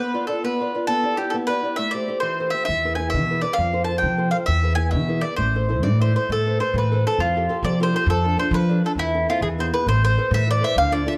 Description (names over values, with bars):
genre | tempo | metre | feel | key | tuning
italian folk, Italian serenade | 134 BPM (dotted quarters) | 6/8 | straight | A minor | A4 = 436 Hz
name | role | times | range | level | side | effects
mandolin | melody | 0.0-11.1 s | E4 to A5 | -25 LUFS | equal | none
nylon-string guitar | accompaniment | 0.0-11.2 s | B2 to E5 | -28 LUFS | equal | none
upright bass | bass | 2.7-11.1 s | A1 to F3 | -24 LUFS | equal | none
room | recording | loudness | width
light reverb | dark, warm production | -21 LUFS | mono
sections
0.0-6.3 A section; 6.3-11.2 B section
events
nylon-string guitar fill 5.8-6.3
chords
0.0 Bdim; 0.9 Em7/B; 1.8 Am7; 2.7 E; 3.6 F; 4.5 E; 5.4 Am; 6.3 Amadd9; 7.2 Fadd9; 8.1 Dm/F; 9.0 Am/E; 9.4 E; 9.9 Amadd9